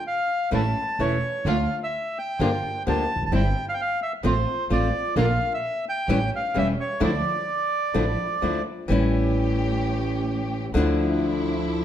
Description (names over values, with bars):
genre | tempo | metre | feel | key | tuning
tango | 129 BPM | 4/4 | rubato | D minor | A4 = 441 Hz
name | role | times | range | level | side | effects
bandoneon | melody | 0.0-8.6 s | C5 to A5 | -26 LUFS | right 1 dB | none
flamenco guitar | accompaniment | 0.5-11.8 s | D3 to G4 | -26 LUFS | left 3 dB | none
rich symphonic string section | stabs | 0.5-11.8 s | F3 to G4 | -31 LUFS | right 3 dB | none
upright bass | bass | 0.5-11.8 s | E1 to D2 | -26 LUFS | right 1 dB | none
room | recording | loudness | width
wet large studio reverb, RT60 1.3 s | dark, warm production | -22 LUFS | side -10 dB against mid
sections
0.0-8.9 A section; 8.9-11.8 B section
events
none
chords
0.0 N.C.; 0.5 A; 1.5 Dm; 2.4 Gm7; 3.3 C/G; 4.2 F/A; 5.2 Bb; 6.1 A7; 7.0 Dmadd9; 8.9 A7; 10.7 Dmadd9